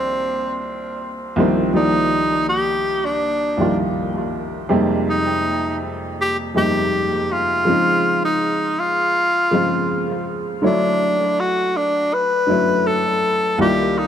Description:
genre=R&B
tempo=81 BPM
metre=4/4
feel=swing 54% on 16ths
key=unclear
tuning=A4 = 439 Hz
part: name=breathy tenor saxophone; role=melody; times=0.0-14.1 s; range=C4 to B4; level=-19 LUFS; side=equal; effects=dub echo
part: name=warm upright piano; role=accompaniment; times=0.0-14.1 s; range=C2 to D5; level=-20 LUFS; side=equal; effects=dub echo
room=moderate echo chamber reverb, RT60 1.8 s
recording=echo-heavy mix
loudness=-17 LUFS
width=side -9 dB against mid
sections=0.0-1.7 A section; 1.7-14.1 B section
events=none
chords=0.0 Cm11; 4.7 Fm11; 7.7 Dbmaj9; 10.6 Bm11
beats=0.25 0.99 | 1.74 2.48 3.22 3.96 | 4.70 5.44 6.18 6.92 | 7.66 8.40 9.14 9.88 | 10.62 11.37 12.11 12.85 | 13.59

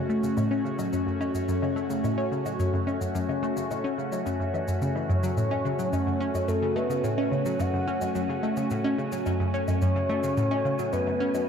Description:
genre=ambient, sequencer-driven space music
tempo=108 BPM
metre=4/4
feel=straight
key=F# minor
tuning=A4 = 438 Hz
part: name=phased analog pad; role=sustained chords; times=0.0-11.5 s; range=A3 to F#4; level=-30 LUFS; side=equal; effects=phaser, chorus
part: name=wind-like tuned noise texture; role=texture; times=0.0-11.5 s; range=C#4 to G#5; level=-40 LUFS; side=right 2 dB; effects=built-in reverb
part: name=analog pluck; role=riff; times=0.1-11.4 s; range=F#2 to C#4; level=-27 LUFS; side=equal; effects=chorus, phaser, cassette tape, ping-pong delay
part: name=shaker and woodblock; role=percussion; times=0.2-11.5 s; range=none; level=-41 LUFS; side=left 4 dB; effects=ping-pong delay
part: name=soft octave-layered synth lead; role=melody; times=5.4-11.5 s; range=A4 to F#5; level=-30 LUFS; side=left 1 dB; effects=chorus, ping-pong delay
room=moderate plate reverb, RT60 3.2 s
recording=echo-heavy mix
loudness=-24 LUFS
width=side -7 dB against mid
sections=0.0-11.5 A section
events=fade-in on synth texture 0.0-11.5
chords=0.0 F#m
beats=0.37 | 0.93 1.48 2.04 2.59 | 3.15 3.71 4.26 4.82 | 5.37 5.93 6.48 7.04 | 7.59 8.15 8.71 9.26 | 9.82 10.37 10.93 11.48

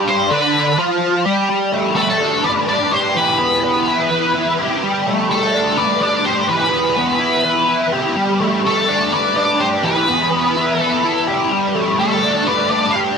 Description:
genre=rock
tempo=251 BPM (eighths)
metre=7/8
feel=straight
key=G mixolydian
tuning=A4 = 440 Hz
part: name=overdriven electric guitar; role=riff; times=0.0-13.2 s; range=G2 to B4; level=-16 LUFS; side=equal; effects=flanger
part: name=octave-fuzz lead guitar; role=melody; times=0.1-13.0 s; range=A4 to F5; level=-18 LUFS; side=left 1 dB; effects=wah, distortion, slapback echo
room=little or no reverb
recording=dry, close 1970s-style studio recording, lossy compression artefacts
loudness=-14 LUFS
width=side -6 dB against mid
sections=0.0-1.5 A section; 1.5-13.2 B section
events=none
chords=0.0 G; 1.5 Gadd9; 3.1 Em; 4.8 Gadd9; 6.5 Em; 8.2 Gadd9; 9.8 Em; 11.5 Gadd9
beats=0.06 0.30 0.54 0.77 1.01 1.25 | 1.48 1.72 1.96 2.20 2.43 2.67 2.91 | 3.15 3.38 3.62 3.86 4.10 4.34 4.58 | 4.82 5.06 5.29 5.53 5.77 6.01 6.25 | 6.49 6.73 6.97 7.21 7.45 7.69 7.93 | 8.17 8.41 8.65 8.88 9.12 9.36 9.60 | 9.84 10.08 10.32 10.56 10.80 11.04 11.28 | 11.51 11.75 11.99 12.23 12.47 12.70 12.94

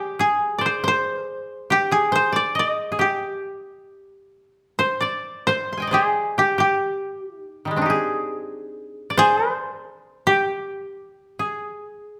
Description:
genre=japanese traditional, Japanese chamber music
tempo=68 BPM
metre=2/4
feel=uneven beats, rubato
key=G miyako bushi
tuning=A4 = 440 Hz
part: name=koto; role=melody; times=0.0-12.2 s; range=G4 to Eb5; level=-23 LUFS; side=equal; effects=none
part: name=koto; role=second line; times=0.0-12.2 s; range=Eb3 to C6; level=-27 LUFS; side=equal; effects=none
room=moderate recital hall reverb, RT60 1.3 s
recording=none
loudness=-22 LUFS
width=mono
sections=0.0-5.3 A section; 5.3-12.2 B section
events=none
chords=none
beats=0.86 | 1.72 2.57 | 3.44 4.34 | 5.26 6.16 | 7.04 7.90 | 8.76 9.62 | 10.50 11.40

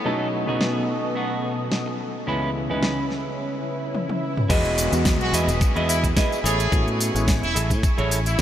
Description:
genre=nu-disco, nu disco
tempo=108 BPM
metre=4/4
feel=swing 53% on 16ths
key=E major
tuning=A4 = 440 Hz
part: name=brilliant trumpet section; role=melody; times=0.0-0.1, 5.2-8.4 s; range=B3 to G#4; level=-30 LUFS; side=equal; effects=analog delay
part: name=lush unison pad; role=sustained chords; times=0.0-8.4 s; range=B2 to C#6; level=-30 LUFS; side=equal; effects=chorus, sidechain pumping
part: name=clean electric guitar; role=riff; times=0.0-8.4 s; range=B3 to E5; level=-28 LUFS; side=right 1 dB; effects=wide subtle chorus, tape echo
part: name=warm concert grand piano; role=accompaniment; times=0.1-7.4 s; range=C#2 to D#5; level=-28 LUFS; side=equal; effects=sidechain pumping, tape echo
part: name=pop drum kit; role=drums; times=0.6-8.4 s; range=crash cymbal, hi-hat, snare drum, tambourine, toms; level=-28 LUFS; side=equal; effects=low-pass filter on snare, small room ambience, low-pass filter on toms, low-pass filter on hats, low-pass filter on cymbals, low-pass filter on perc
part: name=swell and downlifter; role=sound effects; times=3.6-8.4 s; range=none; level=-33 LUFS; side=equal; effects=none
part: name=modern bright fingered electric bass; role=bass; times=4.5-8.3 s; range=E1 to A2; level=-24 LUFS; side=equal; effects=none
part: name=electronic kick drum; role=drums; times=4.5-8.4 s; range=none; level=-21 LUFS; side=equal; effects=small room ambience
room=moderate huge ambient reverb, RT60 8.2 s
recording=dreamy mix soaked in reverb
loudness=-20 LUFS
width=side -11 dB against mid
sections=0.0-4.5 A section; 4.5-8.4 B section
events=swell 3.6-4.5; drum fill 3.9-4.5; drop 4.5-8.4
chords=0.1 B7; 2.3 C#m7; 4.5 Emaj7; 6.4 Amaj7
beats=| 0.06 0.61 1.17 1.72 | 2.28 2.83 3.39 3.95 | 4.50 5.06 5.61 6.17 | 6.72 7.28 7.83 8.39

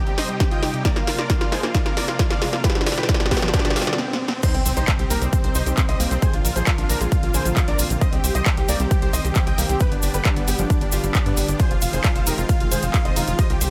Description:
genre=uplifting trance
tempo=134 BPM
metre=4/4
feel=straight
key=C minor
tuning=A4 = 440 Hz
part: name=dense compressed supersaw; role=melody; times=0.0-13.7 s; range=B3 to G5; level=-31 LUFS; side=equal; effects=cassette tape, sidechain pumping, digital delay
part: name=analog string pad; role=sustained chords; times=0.0-13.7 s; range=B2 to G4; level=-33 LUFS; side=equal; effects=ensemble chorus, sidechain pumping
part: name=analog pluck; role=arpeggios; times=0.0-13.7 s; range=G2 to F5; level=-33 LUFS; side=equal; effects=chorus, sidechain pumping, digital delay
part: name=riser, swell and impact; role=sound effects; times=1.0-6.2 s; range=none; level=-36 LUFS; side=equal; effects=none
part: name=punchy analog drum machine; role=drums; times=0.1-13.7 s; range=crash cymbal, handclaps, hi-hat, ride cymbal, snare drum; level=-28 LUFS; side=equal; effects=overdrive
part: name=electronic kick drum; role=drums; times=0.4-13.5 s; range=none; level=-23 LUFS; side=equal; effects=overdrive
part: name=warm concert grand piano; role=second line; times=4.4-13.7 s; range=C4 to G5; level=-34 LUFS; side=equal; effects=sidechain pumping, digital delay
part: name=cabasa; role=percussion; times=4.4-13.7 s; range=none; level=-32 LUFS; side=equal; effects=none
part: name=tight sequencer bass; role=bass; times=4.5-13.7 s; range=F1 to G2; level=-26 LUFS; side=equal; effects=sidechain pumping
room=light reverb, digital ambience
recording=none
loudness=-20 LUFS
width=mono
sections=0.0-4.4 A section; 4.4-13.7 B section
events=build-up 0.0-4.4; drum fill 0.0-4.0, 4.0-4.4; filter sweep on synth arpeggio sound 0.0-4.4; swell 3.6-4.4; stop 4.0-4.4; drop 4.4-13.7; impact 4.4-6.2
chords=0.0 Cm; 0.8 Bbadd9; 2.6 G; 4.4 Cm; 6.2 Bbadd9; 8.0 Cm; 9.8 G; 11.6 Fm7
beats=0.40 | 0.85 1.30 1.75 2.19 | 2.64 3.09 3.54 3.98 | 4.43 4.88 5.33 5.78 | 6.22 6.67 7.12 7.57 | 8.01 8.46 8.91 9.36 | 9.80 10.25 10.70 11.15 | 11.60 12.04 12.49 12.94 | 13.39

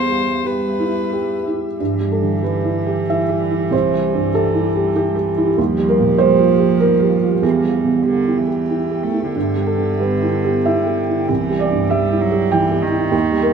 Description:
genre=neoclassical piano and strings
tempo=95 BPM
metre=3/4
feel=uneven beats, rubato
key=G major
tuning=A4 = 445 Hz
part: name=dark violin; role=melody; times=0.0-1.5 s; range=B4 to C5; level=-22 LUFS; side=left 5 dB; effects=none
part: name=felt-muted upright piano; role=accompaniment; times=0.0-13.5 s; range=C2 to G5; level=-16 LUFS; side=right 2 dB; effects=none
part: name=glassy FM pad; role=sustained chords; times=0.0-13.5 s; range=G3 to G5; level=-26 LUFS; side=left 3 dB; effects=ensemble chorus, built-in reverb, phaser
part: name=warm cello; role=second line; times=1.8-13.5 s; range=D3 to A3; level=-22 LUFS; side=right 6 dB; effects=none
room=light reverb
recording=minimal, uncompressed stereo recording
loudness=-15 LUFS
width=side -6 dB against mid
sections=0.0-1.8 A section; 1.8-13.5 B section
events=none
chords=0.0 Em; 1.8 G6; 3.7 C; 5.6 Ebadd9; 7.4 Em; 9.3 G6; 11.3 C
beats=0.45 1.13 | 1.79 2.43 3.09 | 3.72 4.35 4.96 | 5.58 6.19 6.80 | 7.43 8.06 8.71 | 9.35 10.00 10.66 | 11.29 11.91 12.52 | 13.12

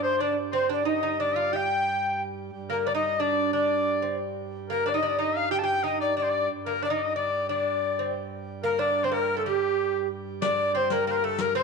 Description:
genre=medieval dance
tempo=182 BPM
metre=3/4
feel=straight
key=G minor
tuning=A4 = 438 Hz
part: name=mellow tenor recorder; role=melody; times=0.0-11.6 s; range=G4 to A5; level=-26 LUFS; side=left 2 dB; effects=none
part: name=bright shawm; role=second line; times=0.0-11.6 s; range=G4 to G5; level=-31 LUFS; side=left 10 dB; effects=none
part: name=lute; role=second line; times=0.0-11.6 s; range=G3 to G4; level=-31 LUFS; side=right 12 dB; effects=slapback echo
part: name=pipe organ, plenum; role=drone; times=0.0-11.6 s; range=G2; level=-38 LUFS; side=right 6 dB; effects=none
part: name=riq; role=percussion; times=10.4-11.6 s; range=none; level=-34 LUFS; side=left 9 dB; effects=none
room=wet echo chamber reverb, RT60 1.6 s, small room reverb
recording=1960s-style stereo with parts hard left and right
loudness=-24 LUFS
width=side -4 dB against mid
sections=0.0-2.5 A section; 2.5-10.4 B section; 10.4-11.6 C section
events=speeding up 0.0-11.6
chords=none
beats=0.18 | 0.52 0.85 1.19 | 1.52 1.86 2.19 | 2.53 2.86 3.19 | 3.53 3.86 4.19 | 4.52 4.85 5.18 | 5.51 5.84 6.17 | 6.50 6.83 7.16 | 7.49 7.81 8.14 | 8.47 8.79 9.12 | 9.45 9.77 10.10 | 10.42 10.74 11.07 | 11.39

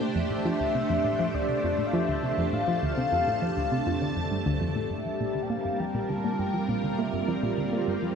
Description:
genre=ambient, sequencer-driven space music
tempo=101 BPM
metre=4/4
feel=straight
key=G dorian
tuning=A4 = 439 Hz
part: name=string machine, full ensemble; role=sustained chords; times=0.0-8.2 s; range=G3 to A5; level=-29 LUFS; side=right 2 dB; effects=phaser, ensemble chorus
part: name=analog pluck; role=riff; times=0.0-8.1 s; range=D2 to Bb3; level=-30 LUFS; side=equal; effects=chorus, tape echo
part: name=pulsing gated texture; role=texture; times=0.0-4.9 s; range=D4 to D5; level=-42 LUFS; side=equal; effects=none
part: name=mellow horn-like synth lead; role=melody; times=0.1-8.2 s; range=D5 to A5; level=-31 LUFS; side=left 3 dB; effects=lush chorus, tape echo
room=wet lush hall reverb, RT60 2.7 s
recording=none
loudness=-25 LUFS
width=side -6 dB against mid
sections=0.0-4.9 A section; 4.9-8.2 B section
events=filter sweep on synth arpeggio sound 0.0-4.9, 4.9-8.2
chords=0.2 Dmadd9; 4.9 Gm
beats=| 0.15 0.75 1.34 1.94 | 2.53 3.12 3.72 4.31 | 4.91 5.50 6.09 6.69 | 7.28 7.88

